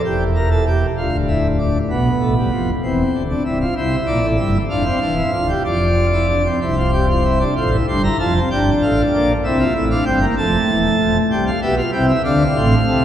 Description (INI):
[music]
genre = classical, baroque-style 3-part fugue for pipe organ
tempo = 64 BPM (dotted quarters)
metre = 6/8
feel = straight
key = unclear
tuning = A4 = 437 Hz
[part]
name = pipe organ, plenum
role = solo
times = 0.0-13.0 s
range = C1 to C6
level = -15 LUFS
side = equal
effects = none
[sound]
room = wet cathedral reverb, RT60 4.4 s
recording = heard from further back in the room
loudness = -15 LUFS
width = side -10 dB against mid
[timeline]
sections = 0.0-7.6 A section; 7.6-13.0 B section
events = none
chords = 0.0 A5/E; 1.0 Dm; 1.9 G7; 2.8 C; 3.8 C13; 4.7 Dm; 5.7 Csus4/F; 6.6 C; 7.6 F; 8.5 Gm7; 9.4 C7; 10.4 F; 11.3 C; 12.2 Dm7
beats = | 0.04 0.97 | 1.90 2.83 | 3.76 4.70 | 5.65 6.61 | 7.57 8.51 | 9.45 10.38 | 11.30 12.24